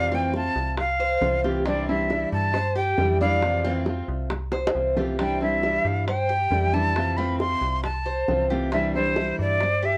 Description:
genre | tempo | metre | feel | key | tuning
latin, Cuban son and guajira | 136 BPM | 4/4 | straight | C major | A4 = 440 Hz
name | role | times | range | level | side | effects
breathy bright jazz flute | melody | 0.0-10.0 s | C5 to C6 | -27 LUFS | equal | plate reverb
nylon-string guitar | accompaniment | 0.0-9.7 s | C3 to F4 | -30 LUFS | equal | none
Cuban tres | arpeggios | 0.0-10.0 s | C4 to C5 | -31 LUFS | equal | none
metallic FM bass | bass | 0.0-10.0 s | C2 to G2 | -30 LUFS | equal | none
bongos | percussion | 0.1-10.0 s | none | -33 LUFS | equal | none
room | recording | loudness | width
light reverb | worn, warbling old tape, cassette tape, warbly pitch drift | -24 LUFS | mono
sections
0.0-10.0 A section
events
drum fill 4.5-5.2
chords
0.0 Fmaj7; 1.7 Cadd9; 3.4 Fmaj7; 5.2 Cadd9; 7.0 Fmaj7; 8.7 Cadd9

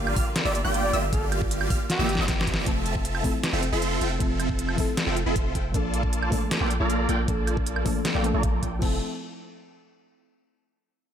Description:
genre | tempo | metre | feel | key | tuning
future bass | 156 BPM | 4/4 | half-time | F major | A4 = 435 Hz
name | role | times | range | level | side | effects
rich chamber string section | sustained chords | 0.0-2.6 s | D3 to F4 | -38 LUFS | right 1 dB | sidechain pumping
wide unison pluck | arpeggios | 0.0-2.6 s | E6 to G6 | -35 LUFS | equal | sidechain pumping
supersaw chords | riff | 0.0-9.0 s | Bb3 to C6 | -28 LUFS | right 1 dB | phaser, sidechain pumping, low-pass filter, ping-pong delay
long sustained 808-style bass | bass | 0.0-9.0 s | F1 to Bb1 | -28 LUFS | equal | sidechain pumping
dubstep drum kit | drums | 0.1-8.9 s | crash cymbal, hi-hat, snare drum, woodblock | -30 LUFS | right 1 dB | none
electronic kick drum | drums | 0.2-8.9 s | none | -28 LUFS | equal | none
trumpet with bucket mute | melody | 0.5-2.2 s | G4 to D5 | -32 LUFS | equal | sidechain pumping, ping-pong delay
soft round pluck | accompaniment | 2.6-9.0 s | F3 to E5 | -32 LUFS | left 2 dB | chorus, sidechain pumping, ping-pong delay
room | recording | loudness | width
little or no reverb | none | -23 LUFS | side -9 dB against mid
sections
0.0-2.7 A section; 2.7-8.8 B section; 8.8-10.4 C section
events
drop 0.0-2.7; drum fill 1.9-2.7; band accent 2.5; filter sweep on 808-style bass 2.7-8.8; filter sweep on supersaw synth 2.7-8.8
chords
0.0 Gm7; 2.7 Fmaj7; 5.7 Bbmaj7; 8.8 Fmaj7

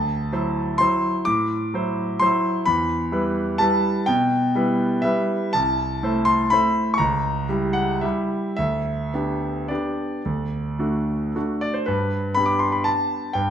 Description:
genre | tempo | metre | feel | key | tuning
classical, piano waltz | 106-137 BPM | 3/4 | rubato | G major | A4 = 440 Hz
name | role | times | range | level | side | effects
clear concert grand piano | solo | 0.0-13.5 s | C2 to D6 | -20 LUFS | equal | none
room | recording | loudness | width
wet recital hall reverb, RT60 1.5 s | minimal, uncompressed stereo recording | -20 LUFS | side -9 dB against mid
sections
0.0-11.9 A section; 11.9-13.5 B section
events
none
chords
0.0 D9; 2.7 Em; 5.5 Am/C; 7.0 C#dim7; 8.6 G/D; 10.3 D; 11.9 G

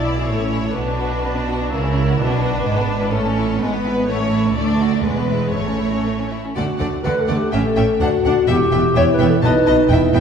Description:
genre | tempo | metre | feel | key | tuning
quick classical-period movement for symphony orchestra | 126 BPM | 2/4 | rubato | A major, D major from 6.6 s | A4 = 441 Hz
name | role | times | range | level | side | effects
rich symphonic violin section | melody | 0.0-10.2 s | A4 to A5 | -26 LUFS | left 2 dB | none
clear chamber violin section | second line | 0.0-10.2 s | G#3 to F#5 | -26 LUFS | left 3 dB | none
rich chamber viola section | accompaniment | 0.0-10.2 s | G#3 to E4 | -25 LUFS | right 1 dB | none
clear chamber double bass section | bass | 0.0-10.2 s | E1 to D2 | -23 LUFS | right 2 dB | none
clear symphonic cello section | bass | 0.0-10.2 s | D2 to D3 | -22 LUFS | right 2 dB | none
dark clarinet | second line | 6.6-10.1 s | F#4 to C#5 | -19 LUFS | equal | none
mellow French horn section | sustained chords | 7.0-10.2 s | A3 to F#4 | -19 LUFS | left 2 dB | none
room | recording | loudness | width
wet scoring stage reverb, RT60 1.8 s | heard from further back in the room | -16 LUFS | side -7 dB against mid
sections
0.0-6.6 A section; 6.6-10.2 B section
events
none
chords
0.3 A; 0.8 Bm; 1.7 F#7/C#; 2.2 Bm; 2.7 E7/G#; 3.1 A; 3.6 E/G#; 4.1 A; 4.6 D; 5.0 E; 5.5 A; 6.6 D; 7.5 A; 8.0 D; 8.5 Em; 9.4 B

